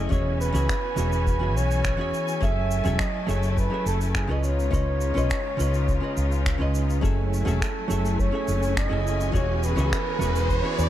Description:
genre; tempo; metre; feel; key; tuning
sunset chillout; 104 BPM; 4/4; straight; F# dorian; A4 = 438 Hz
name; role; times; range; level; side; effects
dark flugelhorn; melody; 0.0-10.9 s; G#4 to E5; -30 LUFS; equal; digital delay
hollow-body jazz guitar; accompaniment; 0.0-10.9 s; C#3 to E5; -30 LUFS; equal; auto-pan, digital delay
bright symphonic string section; sustained chords; 0.0-10.9 s; C#3 to G#5; -32 LUFS; equal; none
woody fretless electric bass; bass; 0.0-10.9 s; E1 to E2; -25 LUFS; equal; none
electronic kick drum; drums; 0.1-10.6 s; none; -27 LUFS; equal; overdrive
shaker and finger snaps; drums; 0.1-10.9 s; none; -34 LUFS; right 1 dB; none
riser; sound effects; 8.5-10.9 s; none; -32 LUFS; right 2 dB; none
room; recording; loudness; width
light reverb, studio ambience; dark, warm production; -22 LUFS; side -12 dB against mid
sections
0.0-10.9 A section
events
riser 8.5-10.9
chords
0.1 E6; 2.4 F#m9; 4.4 C#7; 7.0 F#m9; 9.3 E6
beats
| 0.11 0.69 1.27 1.84 | 2.42 3.00 3.57 4.15 | 4.73 5.30 5.88 6.46 | 7.04 7.61 8.19 8.77 | 9.34 9.92 10.50

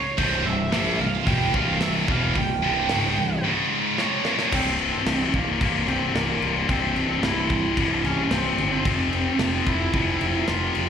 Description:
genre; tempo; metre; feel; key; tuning
heavy metal; 111 BPM; 4/4; straight; C phrygian dominant; A4 = 439 Hz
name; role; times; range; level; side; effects
high-gain lead guitar; melody; 0.0-10.9 s; Bb3 to G5; -28 LUFS; right 3 dB; distortion, slapback echo, digital delay
heavy high-gain guitar; riff; 0.2-10.9 s; C2 to Bb3; -24 LUFS; left 8 dB; distortion, slapback echo
heavy high-gain guitar; riff; 0.2-4.5 s; C2 to Bb3; -26 LUFS; right 14 dB; distortion, slapback echo
fuzz picked electric bass; bass; 0.2-10.9 s; C1 to Bb1; -27 LUFS; equal; overdrive
tight metal drum kit; drums; 0.2-10.9 s; crash cymbal, hi-hat, kick drum, snare drum; -29 LUFS; equal; none
room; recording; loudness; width
little or no reverb; live gig heard through the venue's PA, recital hall reverb; -20 LUFS; side -8 dB against mid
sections
0.0-4.5 A section; 4.5-10.9 B section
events
drum fill 4.0-4.5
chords
0.0 C; 3.4 Db5; 4.0 C5; 8.9 F5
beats
| 0.19 0.73 1.27 1.81 | 2.36 2.90 3.44 3.98 | 4.53 5.07 5.61 6.15 | 6.69 7.24 7.78 8.32 | 8.86 9.40 9.94 10.48

